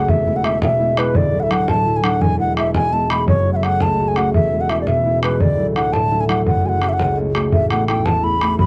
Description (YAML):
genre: celtic folk, Celtic jig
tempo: 113 BPM (dotted quarters)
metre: 6/8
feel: straight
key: F# minor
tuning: A4 = 440 Hz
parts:
  - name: baroque flute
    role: melody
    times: 0.0-8.7 s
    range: B4 to B5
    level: -21 LUFS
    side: equal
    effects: none
  - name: concert harp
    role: accompaniment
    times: 0.0-8.7 s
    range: D1 to F#4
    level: -21 LUFS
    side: equal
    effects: none
  - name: bodhran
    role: percussion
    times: 0.1-8.7 s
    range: none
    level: -23 LUFS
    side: equal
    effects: none
room: small room ambience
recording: dry, close 1970s-style studio recording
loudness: -17 LUFS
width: mono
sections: 0.0-7.5 A section; 7.5-8.7 B section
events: none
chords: 0.1 E; 1.2 Dadd9; 2.2 E; 3.3 F#m; 4.3 E; 5.4 Dadd9; 6.5 F#m; 7.5 Asus2